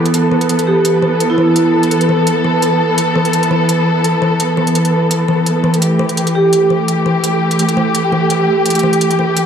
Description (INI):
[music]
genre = half-time drum and bass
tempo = 169 BPM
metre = 4/4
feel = swing 54% on 16ths, half-time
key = E minor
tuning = A4 = 441 Hz
[part]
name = warm symphonic string section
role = sustained chords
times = 0.0-9.5 s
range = E3 to A4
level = -16 LUFS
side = equal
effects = vintage 12-bit sampler grit
[part]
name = kalimba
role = arpeggios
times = 0.0-9.5 s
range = E3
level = -16 LUFS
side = left 1 dB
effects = low-pass filter, tape echo
[part]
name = pulsing gated texture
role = texture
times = 0.0-9.5 s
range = G4 to A5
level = -19 LUFS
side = right 2 dB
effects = chorus, built-in reverb
[part]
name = electronic hi-hat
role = drums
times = 0.1-9.4 s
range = none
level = -20 LUFS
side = right 1 dB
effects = small room ambience
[part]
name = vibraphone with soft mallets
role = melody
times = 0.7-1.8, 6.4-6.7 s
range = E4 to G4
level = -17 LUFS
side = right 2 dB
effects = tape echo
[sound]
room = moderate echo chamber reverb, RT60 1.7 s, small room ambience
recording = dark, warm production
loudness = -11 LUFS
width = side -8 dB against mid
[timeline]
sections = 0.0-9.5 A section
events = none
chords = 0.0 Em